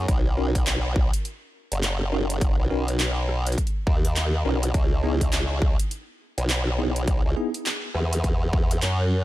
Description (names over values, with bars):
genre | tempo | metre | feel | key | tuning
glitch hop | 103 BPM | 4/4 | swing 60% on 16ths | C# dorian | A4 = 439 Hz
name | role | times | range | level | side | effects
formant-sweep wobble bass | bass | 0.0-9.2 s | F#1 to F#2 | -24 LUFS | equal | chorus, overdrive
dubstep drum kit | drums | 0.1-9.0 s | handclaps, hi-hat, rim click | -29 LUFS | equal | overdrive
electronic kick drum | drums | 0.1-8.7 s | none | -23 LUFS | equal | overdrive
bell-like tine electric piano | stabs | 0.4-7.5 s | B3 to A#4 | -30 LUFS | left 1 dB | fast stereo tremolo, vintage 12-bit sampler grit, sidechain pumping, ping-pong delay
room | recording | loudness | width
little or no reverb | none | -22 LUFS | side -15 dB against mid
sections
0.0-9.2 A section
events
none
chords
0.1 B; 4.7 C#m7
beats
| 0.09 0.67 1.25 1.83 | 2.42 3.00 3.58 4.16 | 4.75 5.33 5.91 6.49 | 7.08 7.66 8.24 8.82